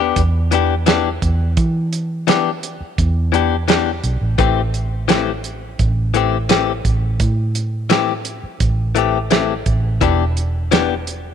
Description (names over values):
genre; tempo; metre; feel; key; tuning
straight-eighth soul blues; 85 BPM; 4/4; straight; E minor; A4 = 440 Hz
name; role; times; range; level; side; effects
direct-recorded clean electric guitar; stabs; 0.0-10.9 s; E3 to G4; -19 LUFS; left 12 dB; none
vintage muted fingered electric bass; bass; 0.0-11.3 s; E1 to E3; -19 LUFS; right 1 dB; none
cloth-damped thuddy drum kit; drums; 0.2-11.2 s; hi-hat, kick drum, snare drum; -19 LUFS; right 4 dB; none
room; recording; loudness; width
light reverb, studio ambience; 1960s-style stereo; -15 LUFS; side -8 dB against mid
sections
0.0-11.3 A section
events
none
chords
0.0 Em7; 4.4 Am7; 10.0 Em7